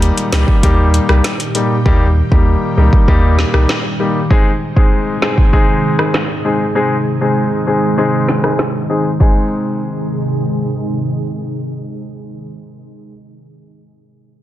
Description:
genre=dancehall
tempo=98 BPM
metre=4/4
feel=straight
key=Ab major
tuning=A4 = 441 Hz
part: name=warm baby grand piano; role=accompaniment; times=0.0-13.1 s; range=G3 to Ab4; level=-17 LUFS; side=left 2 dB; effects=none
part: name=ethereal airy pad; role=sustained chords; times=0.1-12.4 s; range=Bb2 to Ab4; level=-20 LUFS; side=right 1 dB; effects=ensemble chorus, built-in reverb, sidechain pumping
part: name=punchy sub bass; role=bass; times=0.0-3.7 s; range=C2 to Eb2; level=-12 LUFS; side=equal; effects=none
part: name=afro-pop drum kit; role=drums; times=0.0-9.3 s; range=crash cymbal, hi-hat, kick drum, rim click, snare drum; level=-14 LUFS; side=equal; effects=none
room=light reverb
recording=dense, heavily limited modern master, low-pass filter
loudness=-12 LUFS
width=side -13 dB against mid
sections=0.0-9.2 A section; 9.2-11.7 B section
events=filter sweep 0.0-9.2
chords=0.0 Eb; 4.3 Ab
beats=0.02 0.63 1.25 | 1.86 2.47 3.08 3.69 | 4.31 4.92 5.53 6.14 | 6.75 7.37 7.98 8.59 | 9.20 9.82 10.43 11.04

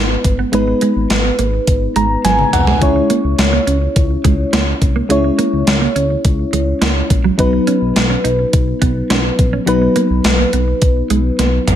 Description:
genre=1980s-style pop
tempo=105 BPM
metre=4/4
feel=straight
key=unclear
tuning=A4 = 443 Hz
part: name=mellow FM electric piano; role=accompaniment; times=0.0-11.8 s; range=F#3 to A#5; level=-16 LUFS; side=left 1 dB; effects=chorus
part: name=clean electric guitar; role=riff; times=0.0-11.7 s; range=F#3 to D#4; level=-21 LUFS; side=right 7 dB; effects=analog chorus, tape echo
part: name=smooth gliding synth bass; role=bass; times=0.0-11.8 s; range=G1 to C#2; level=-18 LUFS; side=equal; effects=none
part: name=gated 80s digital drum machine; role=drums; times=0.2-11.8 s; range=hi-hat, kick drum, snare drum, toms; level=-16 LUFS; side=equal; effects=gated reverb, gated reverb snare, overdrive
room=digital ambience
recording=none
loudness=-12 LUFS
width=side -10 dB against mid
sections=0.0-11.8 A section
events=FM electric piano fill 1.7-2.8; drum fill 2.2-2.8, 11.4-11.8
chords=0.0 G#m; 2.8 C#m; 7.4 B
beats=| 0.53 1.10 1.67 2.25 | 2.82 3.39 3.96 4.53 | 5.10 5.67 6.25 6.82 | 7.39 7.96 8.53 9.10 | 9.67 10.25 10.82 11.39

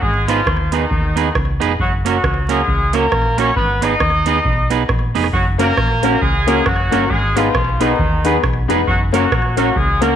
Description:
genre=ska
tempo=136 BPM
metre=4/4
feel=swing 59% on 8ths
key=F# major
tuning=A4 = 435 Hz
part: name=clear horn section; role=melody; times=0.0-10.2 s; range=D#3 to D#5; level=-19 LUFS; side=equal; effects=none
part: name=hollow-body short-scale fingered electric bass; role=bass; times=0.0-10.1 s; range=E#1 to D#2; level=-20 LUFS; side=equal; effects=none
part: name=booming analog drum machine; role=drums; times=0.0-10.1 s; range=hi-hat, kick drum, rim click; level=-20 LUFS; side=right 1 dB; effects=none
part: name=semi-hollow electric guitar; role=accompaniment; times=0.3-10.1 s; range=A#3 to B4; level=-20 LUFS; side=right 7 dB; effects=none
part: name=clear upright piano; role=stabs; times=5.6-10.1 s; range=A#3 to B4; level=-20 LUFS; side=left 10 dB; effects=none
room=moderate echo chamber reverb, RT60 1.3 s, small room reverb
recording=1960s-style stereo with parts hard left and right, vinyl crackle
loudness=-14 LUFS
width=side -9 dB against mid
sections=0.0-10.2 A section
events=none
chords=0.0 G#m; 1.8 F#; 3.6 G#m; 5.3 F#; 7.1 G#m; 8.9 F#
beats=| 0.02 0.46 0.91 1.35 | 1.79 2.23 2.68 3.12 | 3.56 4.00 4.45 4.89 | 5.33 5.78 6.22 6.66 | 7.10 7.54 7.99 8.43 | 8.87 9.31 9.75

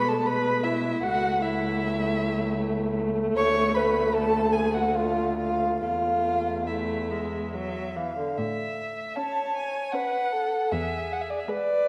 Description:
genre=classical, slow romantic movement for string quartet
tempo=69-80 BPM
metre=3/4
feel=rubato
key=A major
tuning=A4 = 440 Hz
part: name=muted violin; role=melody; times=0.0-11.9 s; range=D5 to C#6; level=-30 LUFS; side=equal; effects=none
part: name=muted violin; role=second line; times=0.0-11.9 s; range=E4 to C#5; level=-32 LUFS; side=equal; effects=none
part: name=muted viola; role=accompaniment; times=0.0-11.9 s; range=D3 to C#4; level=-32 LUFS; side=equal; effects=none
part: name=muted cello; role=bass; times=0.0-11.3 s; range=C#2 to B2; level=-33 LUFS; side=equal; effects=none
room=wet concert hall reverb, RT60 2.2 s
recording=none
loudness=-26 LUFS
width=mono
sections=0.0-8.4 A section; 8.4-11.9 B section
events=none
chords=0.0 B7sus4; 1.0 A/C#; 3.4 Dmmaj7; 5.8 A5/E; 7.5 Esus2; 8.4 A; 10.7 E7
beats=0.28 | 1.04 1.81 2.59 | 3.37 4.15 4.96 | 5.82 6.68 7.54 | 8.38 9.17 9.94 | 10.71 11.48

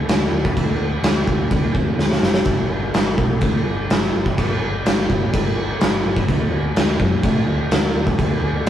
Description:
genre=garage rock duo or trio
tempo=126 BPM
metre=4/4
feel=straight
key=unclear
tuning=A4 = 440 Hz
part: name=hollow-body short-scale fingered electric bass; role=bass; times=0.0-8.7 s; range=F#1 to A2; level=-23 LUFS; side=equal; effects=tube saturation
part: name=oversized low-tuned drum kit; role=drums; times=0.1-8.7 s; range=crash cymbal, kick drum, snare drum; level=-17 LUFS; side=equal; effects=none
room=light reverb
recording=rough rehearsal-room recording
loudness=-16 LUFS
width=side -10 dB against mid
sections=0.0-8.7 A section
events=drum fill 2.0-2.5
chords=none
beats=0.10 | 0.57 1.05 1.53 2.00 | 2.48 2.96 3.43 3.91 | 4.38 4.86 5.33 5.81 | 6.29 6.76 7.24 7.71 | 8.19 8.66

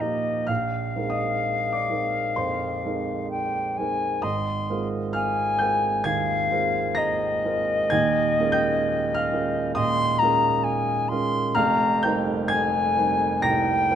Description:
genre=classical, impressionist duo for flute and grand piano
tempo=65 BPM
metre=4/4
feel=rubato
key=Eb major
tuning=A4 = 436 Hz
part: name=silver concert flute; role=melody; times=0.0-14.0 s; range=Eb5 to C6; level=-24 LUFS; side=left 3 dB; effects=none
part: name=dark baby grand piano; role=accompaniment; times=0.0-14.0 s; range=Eb1 to Bb6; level=-25 LUFS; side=right 4 dB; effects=none
room=moderate scoring stage reverb, RT60 1.5 s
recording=close, detailed microphones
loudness=-21 LUFS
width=side -9 dB against mid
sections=0.0-14.0 A section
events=none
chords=0.5 Bb11; 4.2 Ab69; 7.9 Eb11; 11.6 Fm11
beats=| 0.49 1.44 2.38 3.32 | 4.24 5.15 6.06 6.97 | 7.91 8.85 9.75 10.64 | 11.56 12.51 13.44

